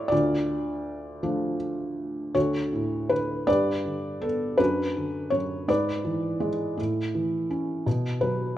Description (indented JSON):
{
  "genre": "classical, lyrical solo piano",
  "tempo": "54 BPM (dotted quarters)",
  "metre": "6/8",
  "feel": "rubato",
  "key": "D major",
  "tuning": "A4 = 440 Hz",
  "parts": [
    { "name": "felt-muted upright piano", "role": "solo", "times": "0.0-8.6 s", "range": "D2 to E5", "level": "-24 LUFS", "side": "equal", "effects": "none" }
  ],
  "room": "moderate recital hall reverb, RT60 1.6 s",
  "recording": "nothing above 10.5 kHz",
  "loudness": "-24 LUFS",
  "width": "side -13 dB against mid",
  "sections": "0.0-2.4 A section; 2.4-8.6 B section",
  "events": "none",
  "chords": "0.1 Dm; 2.4 D; 3.5 G; 4.6 Bm/F#; 5.7 E7/G#; 6.8 A; 7.9 B5"
}